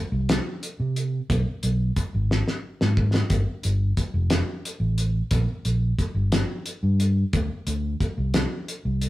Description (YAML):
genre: psychedelic rock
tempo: 60 BPM (dotted quarters)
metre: 6/8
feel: straight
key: G minor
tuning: A4 = 440 Hz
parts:
  - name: fingered electric bass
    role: bass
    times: 0.1-9.1 s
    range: F1 to C3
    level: -23 LUFS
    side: equal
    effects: none
  - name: cloth-damped thuddy drum kit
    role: drums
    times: 0.3-9.1 s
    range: hi-hat, kick drum, snare drum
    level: -25 LUFS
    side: equal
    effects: none
room: moderate stone room reverb, RT60 0.9 s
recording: rough rehearsal-room recording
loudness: -22 LUFS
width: side -16 dB against mid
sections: 0.0-9.1 A section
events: drum fill 2.3-3.3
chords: none